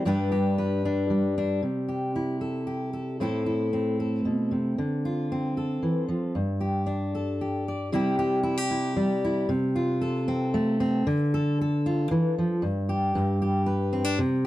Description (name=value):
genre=folk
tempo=115 BPM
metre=3/4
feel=straight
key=C major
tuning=A4 = 440 Hz
part: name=fingerpicked steel-string acoustic guitar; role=solo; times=0.0-14.5 s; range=G2 to D5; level=-24 LUFS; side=equal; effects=none
room=little or no reverb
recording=dry, close 1970s-style studio recording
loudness=-24 LUFS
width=side -15 dB against mid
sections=0.0-1.6 A section; 1.6-7.9 B section; 7.9-14.5 A section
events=none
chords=0.1 G; 1.6 C6; 3.2 Am; 4.8 Dm7; 6.4 G5; 7.9 C; 9.5 F/C; 11.1 Dmadd9; 12.6 N.C.; 13.1 G